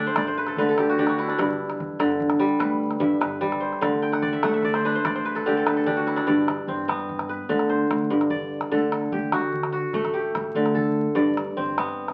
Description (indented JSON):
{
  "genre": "west african traditional, West African string and xylophone music",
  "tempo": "98 BPM (dotted quarters)",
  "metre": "12/8",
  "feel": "straight",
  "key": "G major",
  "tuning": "A4 = 440 Hz",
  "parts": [
    { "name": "kora", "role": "arpeggios", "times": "0.0-12.1 s", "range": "G2 to G5", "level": "-25 LUFS", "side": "equal", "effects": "none" },
    { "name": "upright bass", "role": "bass", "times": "0.0-12.1 s", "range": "G1 to D3", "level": "-35 LUFS", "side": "equal", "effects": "none" },
    { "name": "calabash", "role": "percussion", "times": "0.2-12.1 s", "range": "none", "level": "-33 LUFS", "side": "equal", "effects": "none" }
  ],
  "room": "moderate club reverb, RT60 0.7 s",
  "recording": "very old 78 rpm record, vinyl crackle",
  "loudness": "-24 LUFS",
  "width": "mono",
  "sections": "0.0-6.3 A section; 6.3-12.1 B section",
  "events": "kora fill 0.0-1.4, 4.0-6.3; drum fill 6.0-6.3",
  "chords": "0.0 D5; 1.4 G; 3.8 D5; 6.3 G; 8.7 D; 11.2 G"
}